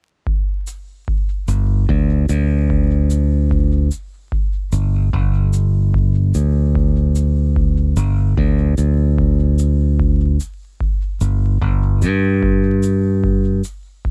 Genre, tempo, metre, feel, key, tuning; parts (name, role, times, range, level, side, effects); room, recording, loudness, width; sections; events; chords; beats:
ambient dub; 74 BPM; 4/4; swing 58% on 16ths; A4 = 435 Hz
electronic kick drum; drums; 0.3-14.1 s; -23 LUFS; equal; overdrive
cabasa; drums; 0.7-13.8 s; -43 LUFS; equal; dub echo
modern bright fingered electric bass; bass; 1.5-13.6 s; G1 to G2; -17 LUFS; equal; tube saturation
little or no reverb; vinyl crackle; -17 LUFS; mono
0.3-14.1 A section
| 0.27 1.08 1.89 2.70 | 3.51 4.32 5.13 5.94 | 6.75 7.56 8.37 9.19 | 10.00 10.81 11.62 12.43 | 13.24 14.05